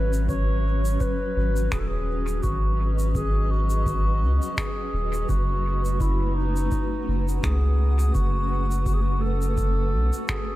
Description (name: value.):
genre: ambient dub.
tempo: 84 BPM.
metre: 4/4.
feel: swing 56% on 16ths.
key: F# dorian.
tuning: A4 = 440 Hz.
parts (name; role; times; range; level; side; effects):
dark clarinet; melody; 0.0-10.6 s; D#4 to C#5; -30 LUFS; equal; dub echo.
granular cloud pad; sustained chords; 0.0-10.6 s; F#3 to F#5; -31 LUFS; equal; built-in reverb.
soft dub sub bass; bass; 0.0-10.1 s; D#1 to C#2; -23 LUFS; equal; none.
shaker and finger snaps; drums; 0.1-10.4 s; none; -36 LUFS; equal; dub echo.
electronic kick drum; drums; 0.3-10.4 s; none; -29 LUFS; equal; none.
room: small room ambience.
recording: none.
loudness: -21 LUFS.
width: side -16 dB against mid.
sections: 0.0-10.6 A section.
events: none.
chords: 0.0 G#m7; 5.3 F#m.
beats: 0.29 1.00 1.72 | 2.43 3.15 3.86 4.58 | 5.29 6.00 6.72 7.43 | 8.15 8.86 9.58 10.29.